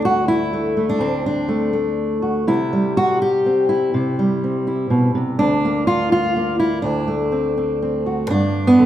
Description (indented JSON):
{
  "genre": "folk, solo fingerstyle acoustic guitar",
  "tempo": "124 BPM",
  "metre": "3/4",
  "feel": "rubato",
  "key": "D mixolydian",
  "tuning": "A4 = 441 Hz",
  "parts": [
    { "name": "fingerpicked steel-string acoustic guitar", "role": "solo", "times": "0.0-8.9 s", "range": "D2 to G4", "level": "-16 LUFS", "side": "equal", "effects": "none" }
  ],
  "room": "wet recital hall reverb, RT60 1.6 s",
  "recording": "recorded in a church or concert hall",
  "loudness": "-17 LUFS",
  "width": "side -11 dB against mid",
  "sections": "0.0-8.3 A section",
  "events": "none",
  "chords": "0.0 D; 2.5 C; 5.4 Bb/D; 6.8 D7; 8.3 G"
}